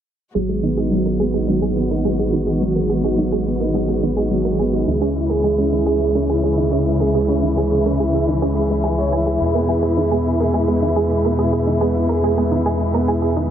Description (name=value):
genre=piano and strings electronica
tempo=106 BPM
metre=4/4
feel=straight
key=G# minor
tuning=A4 = 443 Hz
part: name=dark studio string section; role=sustained chords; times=0.3-13.5 s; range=B2 to F#4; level=-22 LUFS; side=left 2 dB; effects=none
part: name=analog pluck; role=arpeggios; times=0.3-13.4 s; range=D#4 to G#5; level=-24 LUFS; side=right 3 dB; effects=chorus, ping-pong delay
part: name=warm upright piano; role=riff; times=0.3-13.5 s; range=F#3 to G#5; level=-19 LUFS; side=right 2 dB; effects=ping-pong delay
part: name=round analog bass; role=bass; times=0.4-13.5 s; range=G#1 to E2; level=-24 LUFS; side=left 1 dB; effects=tube saturation
part: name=shaker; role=drums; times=0.6-13.2 s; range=none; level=barely audible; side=none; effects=none
room=moderate huge ambient reverb, RT60 5.8 s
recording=low-pass filter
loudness=-16 LUFS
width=side -9 dB against mid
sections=0.4-13.5 A section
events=filter sweep on synth arpeggio sound 0.4-13.5; filter sweep 0.4-13.5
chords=0.4 G#m7; 4.9 C#m; 9.4 E